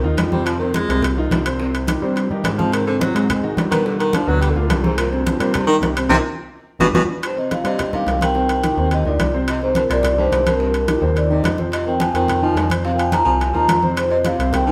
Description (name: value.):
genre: Afro-Cuban jazz.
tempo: 214 BPM.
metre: 4/4.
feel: straight.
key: C minor.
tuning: A4 = 439 Hz.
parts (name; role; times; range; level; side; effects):
warm baritone saxophone; second line; 0.0-14.7 s; D2 to Ab3; -25 LUFS; equal; none.
warm concert grand piano; accompaniment; 0.0-14.7 s; B2 to C5; -26 LUFS; equal; none.
fat analog bass; bass; 0.0-14.7 s; G1 to Ab2; -24 LUFS; equal; none.
bongos; percussion; 0.0-14.7 s; none; -34 LUFS; equal; none.
congas; percussion; 0.0-14.7 s; none; -27 LUFS; equal; none.
timbales; percussion; 0.2-14.7 s; none; -29 LUFS; equal; none.
vibraphone with soft mallets; melody; 7.3-14.7 s; Bb4 to Bb5; -22 LUFS; equal; none.
room: moderate stone room reverb, RT60 1.0 s.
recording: band playing live in one room.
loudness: -18 LUFS.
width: mono.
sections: 0.0-7.2 A section; 7.2-14.7 B section.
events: baritone saxophone solo 0.0-7.2; band accent 6.1-7.2; drum fill 6.7-7.2.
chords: 0.0 F7(no3); 1.6 Cm; 2.7 Ab7; 3.9 G7; 5.0 Cm; 6.7 G; 7.2 Cm7; 11.7 Fm7.